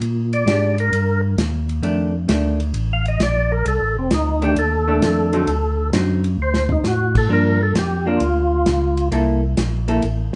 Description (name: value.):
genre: soul jazz organ trio.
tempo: 132 BPM.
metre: 4/4.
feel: swing 68% on 8ths.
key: F mixolydian.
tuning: A4 = 439 Hz.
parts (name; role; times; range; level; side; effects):
tonewheel organ; bass; 0.0-10.3 s; F1 to Bb2; -22 LUFS; equal; chorus vibrato, slow rotary speaker.
warm soul drum kit; drums; 0.0-10.4 s; crash cymbal, hi-hat, kick drum, ride cymbal, snare drum, toms; -26 LUFS; equal; none.
percussive tonewheel organ; melody; 0.3-9.1 s; C4 to F5; -23 LUFS; equal; slow rotary speaker, overdrive, chorus vibrato.
vintage hollow-body jazz guitar; accompaniment; 0.5-10.0 s; D3 to A4; -24 LUFS; equal; none.
room: moderate plate reverb, RT60 1.2 s.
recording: heard from further back in the room, nothing above 10.4 kHz.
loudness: -19 LUFS.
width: mono.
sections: 0.0-10.4 A section.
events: tonewheel organ solo 0.0-10.4; drum fill 6.4-6.8.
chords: 0.0 Bb6; 1.8 F6; 5.5 D7b9; 7.3 Gm7; 9.1 C6.